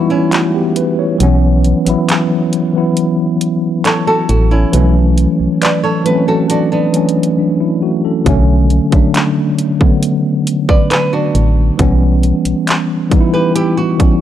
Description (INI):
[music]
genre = contemporary R&B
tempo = 68 BPM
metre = 4/4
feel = straight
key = B minor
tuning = A4 = 444 Hz
[part]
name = mellow tine electric piano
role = accompaniment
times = 0.0-14.2 s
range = D3 to C#5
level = -13 LUFS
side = left 1 dB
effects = medium stereo tremolo
[part]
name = flamenco guitar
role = arpeggios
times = 0.0-14.2 s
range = B3 to D5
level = -17 LUFS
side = right 2 dB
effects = tape echo
[part]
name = downlifter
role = sound effects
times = 0.0-1.2 s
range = none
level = barely audible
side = none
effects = none
[part]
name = trap drum kit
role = drums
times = 0.3-14.2 s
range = handclaps, hi-hat, kick drum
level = -15 LUFS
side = equal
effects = none
[part]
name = solid FM bass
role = bass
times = 1.2-12.5 s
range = A1 to B1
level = -12 LUFS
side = equal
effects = none
[sound]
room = little or no reverb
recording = dry, gritty hardware recording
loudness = -11 LUFS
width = side -11 dB against mid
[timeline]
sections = 0.0-14.2 A section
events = break 0.0-8.3; drums muted 7.4-8.3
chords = 0.0 C#m7b5; 1.2 F#7sus4; 4.7 Dmaj7/B; 8.3 Bm7; 11.8 C#m7b5/B